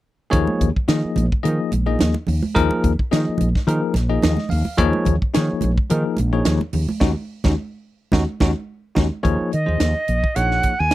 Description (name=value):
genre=electric jazz fusion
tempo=108 BPM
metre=4/4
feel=swing 55% on 16ths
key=unclear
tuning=A4 = 440 Hz
part: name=bell-like tine electric piano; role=accompaniment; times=0.3-10.9 s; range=F3 to F5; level=-22 LUFS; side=left 3 dB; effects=medium stereo tremolo
part: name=woody fretless electric bass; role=bass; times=0.3-10.9 s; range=Bb1 to Eb3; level=-20 LUFS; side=equal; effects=none
part: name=tight funk drum kit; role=drums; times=0.3-10.9 s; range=hi-hat, kick drum, snare drum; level=-22 LUFS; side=right 1 dB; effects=none
part: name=congas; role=percussion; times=0.5-9.1 s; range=none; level=-26 LUFS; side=right 3 dB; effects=none
part: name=bright reedy jazz flute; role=melody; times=9.5-10.9 s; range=Eb5 to Ab5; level=-21 LUFS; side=right 3 dB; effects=none
room=little or no reverb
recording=dry, close 1970s-style studio recording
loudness=-17 LUFS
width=side -15 dB against mid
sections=0.3-9.2 A section; 9.2-10.9 B section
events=tine electric piano fill 4.0-4.8; band accent 7.0-9.2; drum fill 8.1-9.2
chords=0.3 Eb9sus4; 9.2 Ebm9